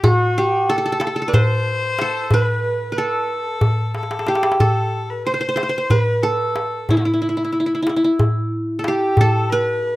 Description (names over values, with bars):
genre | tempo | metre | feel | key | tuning
Turkish makam ensemble | 184 BPM (eighths) | 7/8 | straight | A makam huseyni | A4 = 439 Hz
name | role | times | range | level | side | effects
qanun | melody | 0.0-10.0 s | E4 to C5 | -19 LUFS | right 1 dB | none
bright kamancheh | second line | 0.0-10.0 s | E4 to D5 | -26 LUFS | left 4 dB | none
darbuka | percussion | 0.0-9.9 s | none | -19 LUFS | equal | none
room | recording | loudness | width
small room reverb | rough home demo mix | -16 LUFS | side -17 dB against mid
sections
0.0-10.0 A section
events
drum fill 4.0-4.6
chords
none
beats
| 0.03 0.36 0.69 1.01 1.34 1.67 1.99 | 2.32 2.65 2.97 3.30 3.62 3.95 4.28 | 4.60 4.93 5.26 5.58 5.91 6.24 6.56 | 6.89 7.21 7.54 7.87 8.19 8.52 8.85 | 9.17 9.50 9.83